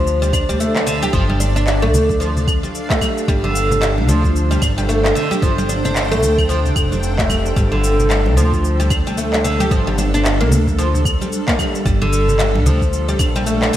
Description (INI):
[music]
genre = organic downtempo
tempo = 112 BPM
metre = 4/4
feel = swing 59% on 16ths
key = unclear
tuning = A4 = 441 Hz
[part]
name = granular cloud pad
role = sustained chords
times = 0.0-13.8 s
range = G3 to G5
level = -25 LUFS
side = right 1 dB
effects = built-in reverb, sidechain pumping
[part]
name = oud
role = arpeggios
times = 0.0-13.8 s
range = D3 to G4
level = -19 LUFS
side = equal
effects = digital delay
[part]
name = upright bass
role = bass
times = 0.0-13.7 s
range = F1 to D2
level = -18 LUFS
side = equal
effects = sidechain pumping
[part]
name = electronic shaker, claves and handclaps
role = drums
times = 0.1-13.8 s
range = none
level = -24 LUFS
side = equal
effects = overdrive
[part]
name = electronic kick drum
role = drums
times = 0.3-13.3 s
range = none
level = -20 LUFS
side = equal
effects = overdrive
[part]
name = congas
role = percussion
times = 0.8-13.7 s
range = none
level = -28 LUFS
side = right 2 dB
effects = none
[sound]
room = moderate scoring stage reverb, RT60 1.8 s, small room ambience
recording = big arena sound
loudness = -14 LUFS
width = side -12 dB against mid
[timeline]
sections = 0.0-13.8 A section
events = none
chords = 0.0 Dm7/G; 7.6 G5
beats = 0.07 0.60 | 1.14 1.68 2.21 2.75 | 3.28 3.82 4.35 4.89 | 5.42 5.96 6.50 7.03 | 7.57 8.10 8.64 9.18 | 9.71 10.25 10.78 11.32 | 11.85 12.39 12.93 13.46